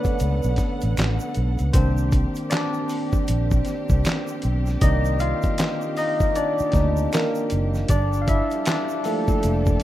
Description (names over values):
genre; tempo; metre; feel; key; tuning
R&B, neo-soul; 78 BPM; 4/4; swing 61% on 16ths; C minor; A4 = 436 Hz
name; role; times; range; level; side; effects
barky tine electric piano; accompaniment; 0.0-9.8 s; D3 to F5; -24 LUFS; equal; lush chorus
rich studio string section; sustained chords; 0.0-9.8 s; F3 to F#5; -34 LUFS; right 1 dB; none
dusty soul sampler-style drum kit; drums; 0.0-9.8 s; handclaps, hi-hat, kick drum, snare drum; -23 LUFS; equal; none
egg shaker and finger snaps; percussion; 0.0-9.8 s; none; -41 LUFS; right 5 dB; none
vintage muted fingered electric bass; bass; 0.2-9.8 s; F1 to D2; -22 LUFS; equal; none
room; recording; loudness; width
light reverb, small room reverb; rough home demo mix; -20 LUFS; side -14 dB against mid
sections
0.0-9.8 A section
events
tine electric piano solo 0.0-9.8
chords
0.0 Bm9; 1.7 Cm9; 7.9 Gm9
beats
0.20 0.97 | 1.74 2.51 3.28 4.05 | 4.82 5.58 6.35 7.12 | 7.89 8.66 9.43